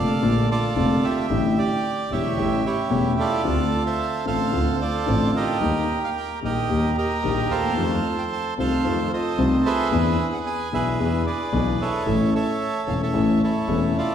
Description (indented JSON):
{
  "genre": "tango",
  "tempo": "112 BPM",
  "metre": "4/4",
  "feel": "rubato",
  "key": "unclear",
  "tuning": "A4 = 439 Hz",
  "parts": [
    { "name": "bandoneon", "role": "melody", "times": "0.0-14.1 s", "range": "E4 to A5", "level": "-24 LUFS", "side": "right 4 dB", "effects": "none" },
    { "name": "dark grand piano", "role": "accompaniment", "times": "0.0-13.9 s", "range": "E1 to A4", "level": "-23 LUFS", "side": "left 3 dB", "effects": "none" },
    { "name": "rich double bass", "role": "bass", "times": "0.0-13.9 s", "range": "E1 to F2", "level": "-28 LUFS", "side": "right 2 dB", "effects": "none" }
  ],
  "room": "wet recital hall reverb, RT60 1.6 s",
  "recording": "recorded in a church or concert hall",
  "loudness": "-20 LUFS",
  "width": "side -9 dB against mid",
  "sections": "0.0-14.1 A section",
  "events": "none",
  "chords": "0.0 Bbmaj7; 1.3 A7sus4; 2.4 A7; 3.4 Dm7; 5.6 Eb; 7.8 F7; 9.9 E7; 12.1 A",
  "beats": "0.22 0.76 | 1.29 1.83 2.37 2.91 | 3.45 3.99 4.53 5.07 | 5.61 6.15 6.69 7.23 | 7.77 8.31 8.84 9.38 | 9.92 10.46 10.99 11.53 | 12.06 12.60 13.14 13.68"
}